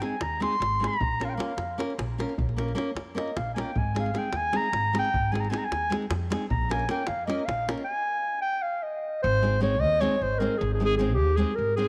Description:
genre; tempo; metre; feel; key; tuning
balkan folk, Balkan wedding band; 307 BPM (eighths); 7/8; straight; Ab major; A4 = 439 Hz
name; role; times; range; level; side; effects
dark clarinet; melody; 0.0-11.9 s; G4 to C6; -30 LUFS; equal; none
nylon-string guitar; accompaniment; 0.0-11.9 s; Ab3 to C5; -34 LUFS; equal; none
davul; percussion; 0.0-7.8 s; none; -36 LUFS; equal; none
upright bass; bass; 0.2-11.8 s; Ab1 to F2; -32 LUFS; equal; none
room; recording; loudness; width
moderate plate reverb, RT60 3.4 s; none; -27 LUFS; mono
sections
0.0-9.2 A section; 9.2-11.9 B section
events
clarinet solo 0.0-9.2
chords
0.0 Ab; 1.0 Bbm; 3.8 Ab; 6.5 Bbm; 7.9 N.C.; 9.2 Ab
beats
0.02 0.22 0.42 0.61 0.81 | 1.01 1.21 1.41 1.60 1.80 2.00 2.20 | 2.39 2.59 2.79 2.98 3.18 3.38 3.57 | 3.77 3.97 4.16 4.36 4.55 4.75 4.95 | 5.14 5.34 5.53 5.73 5.93 6.12 6.32 | 6.51 6.71 6.90 7.10 7.29 7.49 7.68 | 7.88 8.08 8.27 8.47 8.66 8.86 9.05 | 9.25 9.44 9.64 9.83 10.03 10.22 10.41 | 10.61 10.80 11.00 11.19 11.39 11.58 11.78

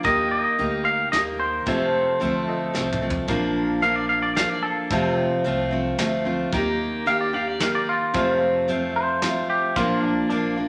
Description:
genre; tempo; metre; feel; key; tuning
honky-tonk and classic country; 111 BPM; 3/4; straight; Bb major; A4 = 440 Hz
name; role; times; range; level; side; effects
twangy electric guitar; melody; 0.0-10.6 s; D4 to F5; -26 LUFS; equal; none
picked steel-string acoustic guitar; accompaniment; 0.0-10.7 s; F2 to A4; -25 LUFS; equal; none
tack piano; accompaniment; 0.0-3.3 s; F4 to Eb5; -37 LUFS; equal; none
upright bass; bass; 0.0-10.7 s; F1 to F2; -36 LUFS; equal; none
soft brush drum kit; drums; 0.0-10.4 s; hi-hat, kick drum, snare drum, toms; -32 LUFS; equal; none
room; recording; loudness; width
wet large studio reverb, RT60 1.4 s; none; -23 LUFS; mono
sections
0.0-3.3 A section; 3.3-10.7 B section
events
drum fill 2.7-3.3; clean electric guitar solo 3.3-10.7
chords
0.0 Eb; 1.7 F; 3.3 Bb; 4.9 F; 6.5 Eb; 8.1 F; 9.8 Bb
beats
| 0.05 0.59 1.13 | 1.67 2.21 2.75 | 3.29 3.83 4.37 | 4.91 5.45 5.99 | 6.52 7.06 7.60 | 8.14 8.68 9.22 | 9.76 10.29

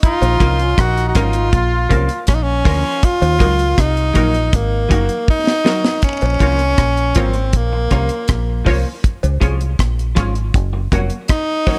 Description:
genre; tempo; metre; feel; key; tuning
roots reggae; 80 BPM; 4/4; straight; Bb minor; A4 = 443 Hz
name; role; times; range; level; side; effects
breathy tenor saxophone; melody; 0.0-11.8 s; Bb3 to Gb4; -21 LUFS; equal; tape echo
brilliant trombone; second line; 0.0-2.2 s; Db4 to F4; -26 LUFS; equal; tape echo
deep reggae drum kit; drums; 0.0-11.8 s; hi-hat, kick drum, rim click, snare drum; -18 LUFS; equal; none
deep dub fingered electric bass; bass; 0.2-11.1 s; F1 to Eb2; -20 LUFS; equal; none
cowbell and jawbone-type rattle; percussion; 0.2-11.8 s; none; -30 LUFS; equal; none
semi-hollow electric guitar; accompaniment; 0.4-11.8 s; F3 to Gb4; -27 LUFS; equal; subtle chorus, tape echo
filtered dub chord stab; stabs; 0.4-11.8 s; Db4 to Db5; -28 LUFS; equal; phaser
room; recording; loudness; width
light reverb, studio reverb; none; -16 LUFS; mono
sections
0.0-6.0 A section; 6.0-11.8 B section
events
drum fill 5.3-6.0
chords
0.0 Bbm; 3.0 Ebm; 6.0 Bbm; 10.5 Gb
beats
| 0.03 0.78 1.53 2.28 | 3.03 3.78 4.53 5.29 | 6.04 6.79 7.54 8.29 | 9.04 9.79 10.54 11.29

